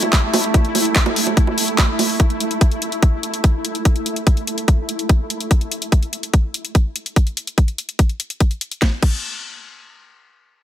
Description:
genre	psychedelic trance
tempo	145 BPM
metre	4/4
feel	straight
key	unclear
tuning	A4 = 441 Hz
part	pulsing gated texture	sustained chords	0.0-5.5 s	A3 to E4	-23 LUFS	right 1 dB	chorus, built-in reverb, sidechain pumping
part	drum and bass drum kit	drums	0.0-9.1 s	bongos, crash cymbal, handclaps, hi-hat, snare drum	-21 LUFS	equal	overdrive
part	deep dark ambient pad	texture	0.0-2.2 s	D4 to G5	-37 LUFS	left 2 dB	none
part	electronic kick drum	drums	0.1-9.1 s	none	-14 LUFS	equal	overdrive
room	little or no reverb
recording	none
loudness	-16 LUFS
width	side -11 dB against mid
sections	0.0-8.8 A section; 8.8-10.6 B section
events	none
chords	0.0 G5; 5.5 N.C.

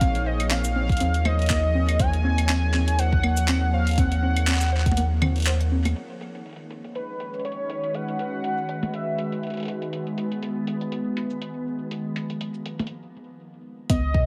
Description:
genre	IDM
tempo	121 BPM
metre	4/4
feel	swing 56% on 16ths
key	unclear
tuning	A4 = 444 Hz
part	warm velvety synth lead	melody	0.0-9.7, 13.9-14.3 s	Cb5 to Ab5	-32 LUFS	equal	chorus, cassette tape, tape echo
part	glassy FM pad	sustained chords	0.0-14.3 s	Eb3 to Db5	-33 LUFS	equal	ensemble chorus, built-in reverb, vintage 12-bit sampler grit
part	soft round pluck	arpeggios	0.0-5.8, 13.9-14.2 s	Cb3 to C5	-33 LUFS	equal	lush chorus, delay
part	warm sub bass	bass	0.0-5.9, 13.9-14.3 s	Bb1 to Eb2	-25 LUFS	equal	none
part	electronic kick drum	drums	0.0-4.9, 13.9-14.3 s	none	-26 LUFS	equal	studio ambience
part	jungle sampler-style drum kit	drums	0.0-14.0 s	cabasa, claves, handclaps, hi-hat, toms	-32 LUFS	equal	low-pass filter on hats, studio ambience, low-pass filter on toms, low-pass filter on perc, low-pass filter on snare, tape echo
room	light reverb, digital ambience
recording	none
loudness	-25 LUFS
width	mono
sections	0.0-6.0 A section; 6.0-13.9 B section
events	kick drops out 5.0-6.0; filter sweep on ambient pad 6.0-13.9; break 12.9-13.9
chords	0.0 Bbm9; 1.0 Ebm9; 6.0 Db7sus2; 11.9 Bb5

